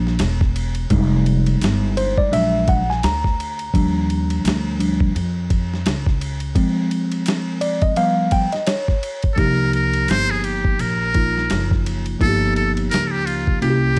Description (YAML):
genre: hip hop, jazz-hop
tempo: 85 BPM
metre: 4/4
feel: swing 59% on 16ths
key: C minor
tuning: A4 = 441 Hz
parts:
  - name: mellow tine electric piano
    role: accompaniment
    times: 0.0-14.0 s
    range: F3 to Bb5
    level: -23 LUFS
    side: equal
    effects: none
  - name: upright bass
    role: bass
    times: 0.0-14.0 s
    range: E1 to F2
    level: -24 LUFS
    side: equal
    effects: none
  - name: dusty soul sampler-style drum kit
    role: drums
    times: 0.1-14.0 s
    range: hi-hat, kick drum, ride cymbal, snare drum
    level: -25 LUFS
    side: equal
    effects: none
  - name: trumpet with metal mute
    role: melody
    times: 9.3-14.0 s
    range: F4 to C5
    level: -24 LUFS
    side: equal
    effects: slapback echo
room: light reverb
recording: dark, warm production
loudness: -19 LUFS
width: mono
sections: 0.0-9.4 A section; 9.4-14.0 B section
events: tine electric piano solo 0.0-9.4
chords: 0.0 Gm7 (rootless); 0.9 Fm9; 2.3 Bbaug7; 3.7 Ebmaj9; 6.6 Fm; 8.0 Db7#11; 9.4 Cm7; 12.2 Gm7b5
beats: 0.21 | 0.91 1.62 2.33 3.03 | 3.74 4.44 5.15 5.86 | 6.56 7.27 7.97 8.68 | 9.38 10.09 10.80 11.50 | 12.21 12.91 13.62